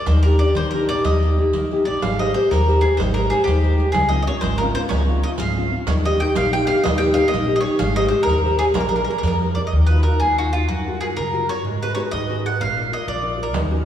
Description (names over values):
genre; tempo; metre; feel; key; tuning
italian folk, Italian serenade; 124 BPM (dotted quarters); 6/8; straight; Ab major, Eb minor from 9.7 s; A4 = 441 Hz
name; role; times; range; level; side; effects
bowl-back mandolin; melody; 0.0-13.6 s; F4 to G5; -23 LUFS; right 1 dB; none
nylon-string guitar; accompaniment; 0.0-13.8 s; Db3 to D5; -21 LUFS; left 2 dB; none
upright bass; bass; 0.1-13.8 s; Ab1 to Eb3; -21 LUFS; equal; none
riq; percussion; 0.1-9.4, 13.5-13.7 s; none; -28 LUFS; right 3 dB; none
room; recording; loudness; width
wet concert hall reverb, RT60 2.2 s; recorded in a church or concert hall, small room ambience; -17 LUFS; side -10 dB against mid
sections
0.0-2.0 A section; 2.0-9.7 B section; 9.7-13.8 C section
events
none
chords
0.1 Ebmaj7; 2.0 Abmaj7; 3.9 Dbmaj7; 5.9 Eb; 7.8 Abmaj7; 8.8 Bb7; 9.7 Ebmadd9; 10.7 Gbmaj7; 11.6 Abm7; 12.6 Bb